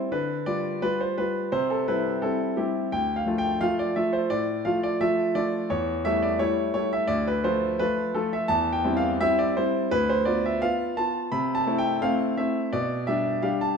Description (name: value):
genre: classical-period piano sonatina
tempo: 86 BPM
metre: 4/4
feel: rubato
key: C major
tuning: A4 = 441 Hz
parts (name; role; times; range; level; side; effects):
- clear concert grand piano; solo; 0.0-13.8 s; D2 to B5; -23 LUFS; equal; none
room: wet recital hall reverb, RT60 1.5 s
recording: minimal, uncompressed stereo recording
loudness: -23 LUFS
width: side -6 dB against mid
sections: 0.0-13.8 A section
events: none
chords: 0.1 G5/D; 1.5 C; 2.9 Dm; 5.7 A5/E; 7.1 Dm; 8.5 C/E; 9.9 Bdim/D; 11.3 Am/C; 12.7 G/B